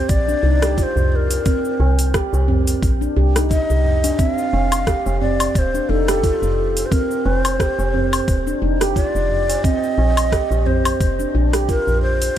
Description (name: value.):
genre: organic downtempo.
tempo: 88 BPM.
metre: 4/4.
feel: swing 56% on 16ths.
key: unclear.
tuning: A4 = 442 Hz.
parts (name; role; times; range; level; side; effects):
breathy hollow low ney; melody; 0.0-12.4 s; A4 to F5; -22 LUFS; left 1 dB; digital delay.
handpan; arpeggios; 0.0-12.4 s; C4 to G4; -22 LUFS; right 2 dB; ping-pong delay.
woody FM bass; bass; 0.0-12.3 s; Eb1 to C2; -19 LUFS; equal; sidechain pumping.
deep house drum kit; drums; 0.1-12.3 s; cabasa, hi-hat, rim click, woodblock; -25 LUFS; left 2 dB; overdrive.
electronic kick drum; drums; 0.1-11.8 s; none; -19 LUFS; equal; none.
tabla; percussion; 0.4-12.3 s; none; -29 LUFS; right 1 dB; none.
room: small room reverb.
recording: none.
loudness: -16 LUFS.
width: side -11 dB against mid.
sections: 0.0-12.4 A section.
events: none.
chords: 0.0 C7(no3); 4.2 Fsus2; 9.6 Bbsus2.